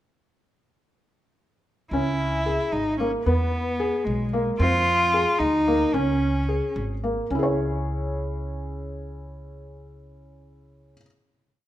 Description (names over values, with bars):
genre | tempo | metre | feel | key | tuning
contemporary instrumental, chamber music in an uneven meter | 222 BPM (eighths) | 5/8 | straight | C# dorian | A4 = 439 Hz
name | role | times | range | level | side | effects
warm cello | melody | 1.9-6.8 s | G#3 to F4 | -23 LUFS | equal | none
felt-muted upright piano | arpeggios | 1.9-11.1 s | A#3 to C#5 | -27 LUFS | equal | none
upright bass | bass | 1.9-10.9 s | G#1 to F2 | -28 LUFS | equal | none
room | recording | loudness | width
moderate recital hall reverb, RT60 1.3 s | none | -21 LUFS | side -13 dB against mid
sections
1.9-7.3 A section; 7.3-10.1 final chord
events
none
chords
1.9 C#m; 3.3 E; 4.6 Fm; 5.9 C#5; 7.3 C#m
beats
| 1.93 2.19 2.46 2.73 3.00 | 3.26 3.53 3.80 4.07 4.33 | 4.60 4.87 5.14 5.40 5.67 | 5.94 6.21 6.49 6.76 7.03 | 7.31 7.58 7.86 8.13 8.41 | 8.69 8.96 9.24 9.52 9.79